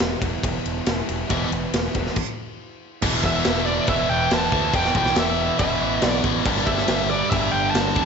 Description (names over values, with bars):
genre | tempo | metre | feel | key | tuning
hard rock | 140 BPM | 4/4 | straight | E minor | A4 = 440 Hz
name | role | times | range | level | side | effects
sludgy distorted guitar | riff | 0.0-2.2 s | E3 to E4 | -29 LUFS | right 2 dB | overdrive, slapback echo
growling picked electric bass | bass | 0.0-8.1 s | E1 to E2 | -28 LUFS | equal | overdrive
tight metal drum kit | drums | 0.0-8.1 s | crash cymbal, kick drum, ride cymbal, snare drum | -24 LUFS | left 1 dB | none
overdriven electric guitar | riff | 1.3-8.1 s | E2 to G3 | -27 LUFS | right 11 dB | slapback echo
scooped high-gain guitar | riff | 1.3-8.1 s | E2 to G3 | -25 LUFS | left 12 dB | distortion
smooth overdriven lead guitar | melody | 3.3-8.1 s | D5 to A5 | -24 LUFS | right 2 dB | slapback echo
room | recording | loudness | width
moderate lush hall reverb, RT60 1.7 s, studio reverb | big arena sound, nothing above 7.8 kHz | -19 LUFS | side -6 dB against mid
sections
0.0-3.0 A section; 3.0-8.1 B section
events
stop 2.2-3.0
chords
0.0 Em; 3.0 E5; 6.5 G5